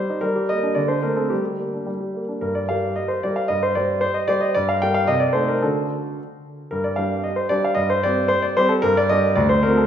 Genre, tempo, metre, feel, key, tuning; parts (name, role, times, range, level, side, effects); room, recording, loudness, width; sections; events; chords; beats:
classical-period piano sonatina; 112 BPM; 2/4; straight; G minor; A4 = 435 Hz
warm grand piano; solo; 0.0-9.9 s; D2 to G5; -18 LUFS; equal
wet recital hall reverb, RT60 1.9 s; recorded in a church or concert hall; -18 LUFS; side -9 dB against mid
0.0-2.4 A section; 2.4-9.9 B section
0.2 Gm; 0.8 D5; 1.3 Gm; 3.5 C5/G; 4.6 Gm; 5.1 Adim/C; 5.6 D; 6.7 G5; 7.8 C5/G; 8.8 G5
| 0.25 0.78 | 1.33 1.89 | 2.44 2.98 | 3.51 4.04 | 4.57 5.10 | 5.64 6.18 | 6.72 7.25 | 7.79 8.32 | 8.85 9.38